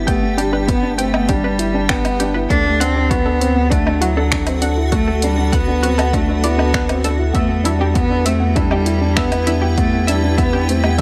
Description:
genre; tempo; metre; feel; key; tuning
piano and strings electronica; 99 BPM; 4/4; straight; unclear; A4 = 440 Hz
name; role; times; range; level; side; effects
granular cloud pad; sustained chords; 0.0-11.0 s; E4 to G5; -29 LUFS; equal; built-in reverb, sidechain pumping
felt-muted upright piano; riff; 0.0-11.0 s; A3 to E4; -24 LUFS; equal; delay
warm sub bass; bass; 0.0-11.0 s; G1 to E2; -22 LUFS; equal; sidechain pumping
rich cello; melody; 0.1-11.0 s; F#3 to D4; -23 LUFS; equal; none
analog pluck; arpeggios; 0.1-11.0 s; E4 to G5; -29 LUFS; equal; chorus, sidechain pumping, delay
deep house drum kit; drums; 0.1-11.0 s; finger snaps, hi-hat, woodblock; -25 LUFS; equal; overdrive, studio reverb
electronic kick drum; drums; 0.1-11.0 s; none; -23 LUFS; equal; overdrive, studio reverb
room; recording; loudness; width
light reverb, digital ambience; none; -16 LUFS; mono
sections
0.0-11.0 A section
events
none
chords
0.0 G; 2.5 D; 7.3 Em

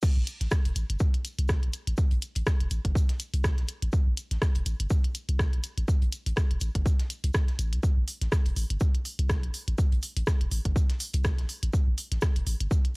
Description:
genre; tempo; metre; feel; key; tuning
minimal techno; 123 BPM; 4/4; swing 57% on 16ths; A minor; A4 = 441 Hz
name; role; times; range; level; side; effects
deep reggae drum kit; drums; 0.0-12.8 s; hi-hat, shaker, snare drum; -46 LUFS; left 1 dB; high-pass filter on hats, high-pass filter on snare, high-pass filter on perc, high-pass filter on room
electronic kick drum; drums; 0.0-12.8 s; none; -24 LUFS; equal; overdrive
minimal click drum kit; drums; 0.0-12.9 s; crash cymbal, hi-hat, rim click; -33 LUFS; equal; none
punchy sub bass; bass; 0.2-12.7 s; E1 to C2; -28 LUFS; equal; sidechain pumping
room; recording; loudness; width
small room ambience; dry, gritty hardware recording, transformer saturation; -25 LUFS; side -30 dB against mid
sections
0.0-13.0 A section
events
drop 0.0-13.0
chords
none

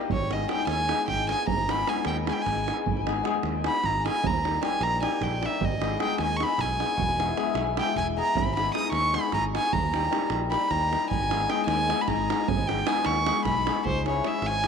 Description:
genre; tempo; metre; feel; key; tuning
balkan folk, Balkan wedding band; 305 BPM (eighths); 7/8; straight; G# harmonic minor; A4 = 440 Hz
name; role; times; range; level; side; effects
hammered dulcimer; accompaniment; 0.0-14.7 s; G3 to G#4; -29 LUFS; left 11 dB; none
davul; percussion; 0.0-14.7 s; none; -31 LUFS; right 9 dB; none
rich violin; melody; 0.1-14.7 s; B#4 to D#6; -27 LUFS; right 1 dB; tape echo
fingered electric bass; bass; 0.1-14.7 s; E1 to D#2; -31 LUFS; right 1 dB; none
room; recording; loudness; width
moderate plate reverb, RT60 2.8 s; 1960s-style stereo with parts hard left and right; -23 LUFS; side -6 dB against mid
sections
0.0-13.9 A section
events
violin solo 0.0-13.9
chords
0.1 G#m; 4.2 D#; 5.6 G#m; 7.0 E; 8.4 G#m; 9.7 D#; 11.1 G#m; 13.9 C#m

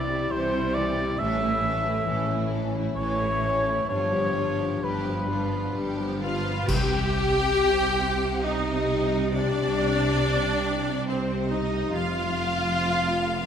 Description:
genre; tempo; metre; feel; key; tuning
cinematic, emotional film score for orchestra; 63-71 BPM; 3/4; rubato; C minor from 6.7 s; A4 = 440 Hz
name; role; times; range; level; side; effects
rich studio violin section; melody; 0.0-13.5 s; C4 to B4; -35 LUFS; left 3 dB; none
silver concert flute; second line; 0.0-6.2 s; B4 to E5; -31 LUFS; left 1 dB; none
warm cor anglais; second line; 0.0-6.2 s; B4 to E5; -30 LUFS; right 1 dB; none
warm symphonic violin section; second line; 0.0-13.5 s; B3 to G5; -32 LUFS; left 3 dB; none
rich symphonic viola section; accompaniment; 0.0-13.5 s; E3 to G4; -30 LUFS; right 1 dB; none
warm French horn section; sustained chords; 0.0-6.4 s; E3 to E4; -32 LUFS; left 4 dB; none
concert harp; arpeggios; 0.0-13.5 s; G2 to F6; -32 LUFS; left 6 dB; none
rich symphonic cello section; bass; 0.0-13.5 s; F2 to C3; -32 LUFS; right 3 dB; none
rich symphonic double bass section; bass; 0.0-13.5 s; F1 to C2; -31 LUFS; right 4 dB; none
clash cymbals and concert bass drum; percussion; 6.7-8.4 s; none; -31 LUFS; equal; none
timpani; percussion; 6.7-8.0 s; C3; -31 LUFS; left 1 dB; none
room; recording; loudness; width
moderate scoring stage reverb, RT60 1.8 s; none; -23 LUFS; side -8 dB against mid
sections
0.0-6.7 A section; 6.7-13.5 B section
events
band accent 6.7-7.6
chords
0.0 C; 1.2 A; 3.9 G7; 6.7 Cm; 11.9 F

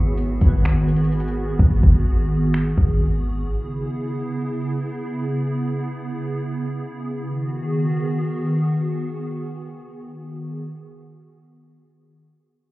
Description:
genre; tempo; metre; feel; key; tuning
hip hop, atmospheric cloud-rap; free time; none; none; G# minor; A4 = 438 Hz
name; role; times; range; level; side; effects
hollow soft pad; sustained chords; 0.0-10.6 s; C#3 to G#4; -24 LUFS; equal; ensemble chorus, sidechain pumping
warm 808-style bass; bass; 0.0-3.5 s; G#1; -20 LUFS; equal; none
twinkling granular texture; texture; 0.0-1.6 s; B3 to F#5; -36 LUFS; right 1 dB; built-in reverb
smooth R&B drum kit; drums; 0.2-2.9 s; finger snaps, hi-hat, kick drum; -16 LUFS; equal; vintage 12-bit sampler grit
room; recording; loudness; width
little or no reverb; heard muffled through a wall, club reverb, EQ; -20 LUFS; side -18 dB against mid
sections
0.0-7.3 A section; 7.3-11.0 B section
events
none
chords
0.0 G#m7; 3.5 C#m7; 7.3 G#m7

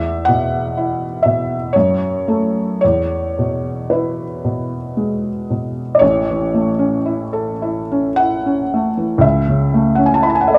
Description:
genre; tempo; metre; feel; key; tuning
classical, romantic nocturne for solo piano; 50-63 BPM; 3/4; rubato; A major; A4 = 443 Hz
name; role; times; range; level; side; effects
felt-muted upright piano; solo; 0.0-10.6 s; A1 to B5; -17 LUFS; equal; none
room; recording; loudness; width
moderate large studio reverb, RT60 1.1 s; dark, warm production; -17 LUFS; mono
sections
0.0-6.0 A section; 6.0-10.6 B section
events
none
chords
0.0 E5; 1.7 F#m; 2.8 E; 6.0 A; 9.2 A/C#

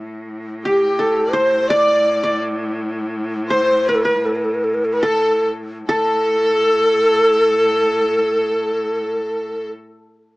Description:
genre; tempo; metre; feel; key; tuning
Arabic maqam ensemble; 70-88 BPM; 4/4; straight; A maqam bayati; A4 = 442 Hz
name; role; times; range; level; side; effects
rich cello; drone; 0.0-9.7 s; A2; -27 LUFS; left 1 dB; none
breathy mellow ney; melody; 0.6-9.7 s; G4 to D5; -16 LUFS; equal; plate reverb
clear studio violin section; second line; 0.7-9.7 s; G4 to D5; -24 LUFS; left 2 dB; none
qanun; second line; 0.7-9.7 s; G4 to D5; -23 LUFS; equal; none
room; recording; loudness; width
light reverb; small speaker sound; -15 LUFS; side -22 dB against mid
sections
0.0-5.9 A section; 5.9-9.3 B section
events
slowing down 0.0-5.9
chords
none

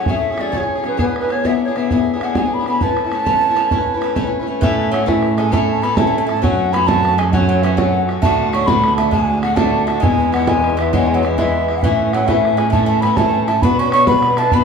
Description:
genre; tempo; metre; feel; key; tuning
celtic folk, Celtic slide; 133 BPM (dotted quarters); 12/8; straight; A major; A4 = 439 Hz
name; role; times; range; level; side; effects
breathy mellow wooden flute; melody; 0.0-14.6 s; B4 to C#6; -18 LUFS; equal; none
picked swing-style acoustic guitar; accompaniment; 0.0-14.6 s; D2 to B4; -19 LUFS; left 3 dB; none
pedal harmonium; drone; 0.0-4.7 s; A2; -30 LUFS; left 1 dB; none
bodhran; percussion; 0.1-14.6 s; none; -21 LUFS; right 2 dB; none
Irish bouzouki; second line; 4.6-14.6 s; E3 to C#4; -23 LUFS; right 3 dB; none
muted cello; bass; 4.6-14.6 s; D2 to B2; -20 LUFS; right 2 dB; none
room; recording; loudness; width
wet large studio reverb, RT60 0.9 s; band playing live in one room; -14 LUFS; side -6 dB against mid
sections
0.0-4.6 A section; 4.6-14.6 B section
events
none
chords
0.0 F#madd9; 1.0 E7; 2.8 Aadd9; 4.6 A; 6.4 F#m; 8.2 D; 10.0 E; 11.8 A; 13.6 Bm

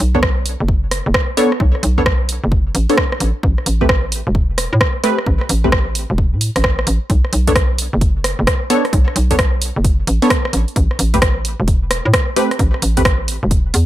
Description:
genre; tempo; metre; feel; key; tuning
UK garage, two-step garage; 131 BPM; 4/4; swing 65% on 16ths; B minor; A4 = 440 Hz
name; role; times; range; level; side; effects
hollow knocking FM bass; bass; 0.0-13.9 s; E1 to A2; -17 LUFS; equal; none
house drum kit; drums; 0.0-13.9 s; hi-hat, rim click; -19 LUFS; equal; none
punchy chord stab; stabs; 0.1-13.0 s; A3 to C#5; -18 LUFS; equal; chorus, digital delay
electronic kick drum; drums; 0.1-13.6 s; none; -17 LUFS; equal; none
room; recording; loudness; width
little or no reverb; none; -13 LUFS; side -14 dB against mid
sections
0.0-13.9 A section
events
none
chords
0.0 Bm9; 3.2 Am9; 7.1 Bm9; 10.5 Am9

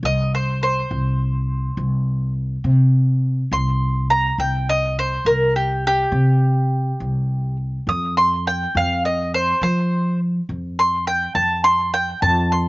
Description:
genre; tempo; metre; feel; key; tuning
acoustic country blues, solo or duo; 69 BPM (dotted quarters); 12/8; straight; unclear; A4 = 440 Hz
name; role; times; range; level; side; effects
upright bass; bass; 0.0-12.7 s; C2 to F3; -20 LUFS; equal; none
mandolin; melody; 0.1-12.7 s; G4 to Eb6; -19 LUFS; equal; slapback echo
room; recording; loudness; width
little or no reverb; recorded outdoors, with no room sound, nothing above 7.5 kHz; -17 LUFS; side -22 dB against mid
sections
0.0-12.7 A section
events
mandolin solo 0.0-12.7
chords
0.0 C5; 7.9 F5

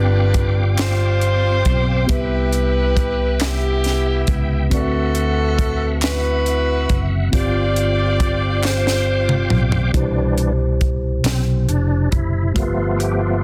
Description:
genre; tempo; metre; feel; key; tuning
slow gospel; 46 BPM (dotted quarters); 6/8; straight; C major; A4 = 440 Hz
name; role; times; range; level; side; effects
warm saxophone section; melody; 0.0-9.9 s; B3 to D5; -24 LUFS; equal; none
mellow tine electric piano; accompaniment; 0.0-13.4 s; G2 to E5; -26 LUFS; equal; none
bright tonewheel organ; sustained chords; 0.0-13.4 s; E3 to D6; -29 LUFS; equal; fast rotary speaker, chorus vibrato
fingered electric bass; bass; 0.0-13.4 s; F1 to D2; -22 LUFS; equal; none
tight funk drum kit; drums; 0.3-13.2 s; hi-hat, kick drum, snare drum, toms; -23 LUFS; equal; none
group handclap; percussion; 0.8-11.7 s; none; -29 LUFS; equal; none
room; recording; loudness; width
little or no reverb; dense, heavily limited modern master; -18 LUFS; mono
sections
0.0-9.9 A section; 9.9-13.4 B section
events
drum fill 8.6-9.9; tonewheel organ solo 9.9-13.4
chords
0.0 G7sus4; 2.1 Cmaj7; 4.7 D13; 7.3 G7sus4; 9.9 Cmaj7; 12.6 G9

